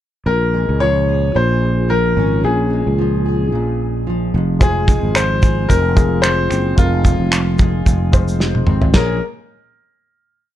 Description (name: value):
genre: acoustic pop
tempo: 111 BPM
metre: 4/4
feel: swing 55% on 16ths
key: Bb minor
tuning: A4 = 441 Hz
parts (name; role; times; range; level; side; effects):
- bright upright piano; melody; 0.3-9.2 s; F4 to Db5; -20 LUFS; left 2 dB; none
- fingerpicked plugged-in steel-string acoustic guitar; accompaniment; 0.3-9.2 s; F2 to Ab4; -21 LUFS; equal; double-tracked left and right
- sustaining fretless electric bass; bass; 0.3-9.2 s; F1 to Db2; -18 LUFS; right 1 dB; none
- dark concert grand piano; accompaniment; 4.6-9.2 s; Ab3 to Db5; -27 LUFS; left 7 dB; none
- cloth-damped thuddy drum kit; drums; 4.6-9.1 s; finger snaps, kick drum, shaker, snare drum, splash cymbal, toms; -14 LUFS; equal; none
room: little or no reverb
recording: dark, warm production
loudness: -13 LUFS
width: side -12 dB against mid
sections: 0.3-8.9 verse; 8.9-10.6 final chord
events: drum fill 8.4-8.9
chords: 0.3 Bbm7; 4.3 Fm; 8.9 Bbm7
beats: | 0.26 0.81 1.35 1.89 | 2.44 2.98 3.52 4.07 | 4.61 5.15 5.70 6.24 | 6.78 7.32 7.86 8.40 | 8.94